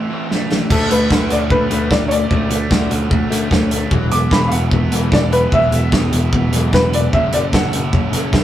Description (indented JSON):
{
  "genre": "indie rock",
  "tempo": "149 BPM",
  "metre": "4/4",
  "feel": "straight",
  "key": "D lydian",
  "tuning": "A4 = 440 Hz",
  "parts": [
    { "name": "bright upright piano", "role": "melody", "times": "0.0-8.4 s", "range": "A4 to D6", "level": "-19 LUFS", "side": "left 1 dB", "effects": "slapback echo" },
    { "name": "raw garage guitar", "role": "riff", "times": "0.0-8.4 s", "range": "E2 to D4", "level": "-26 LUFS", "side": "left 4 dB", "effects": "overdrive" },
    { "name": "sludgy distorted guitar", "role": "riff", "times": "0.0-8.4 s", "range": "E3 to A4", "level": "-23 LUFS", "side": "right 4 dB", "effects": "overdrive" },
    { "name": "loose indie drum kit", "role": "drums", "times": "0.3-8.4 s", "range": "crash cymbal, hi-hat, kick drum, snare drum", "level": "-17 LUFS", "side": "equal", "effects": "none" },
    { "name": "modern bright picked electric bass", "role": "bass", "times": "0.7-8.4 s", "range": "E1 to D2", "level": "-19 LUFS", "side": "equal", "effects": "none" }
  ],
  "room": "moderate studio reverb, RT60 0.6 s",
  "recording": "rough rehearsal-room recording",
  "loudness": "-13 LUFS",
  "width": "side -12 dB against mid",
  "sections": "0.7-8.4 A section",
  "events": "break 0.0-0.7; drum fill 0.3-0.7; upright piano solo 0.7-8.4",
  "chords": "0.0 Am/E; 0.7 Dmaj7; 3.9 Eadd9; 7.1 F#m7"
}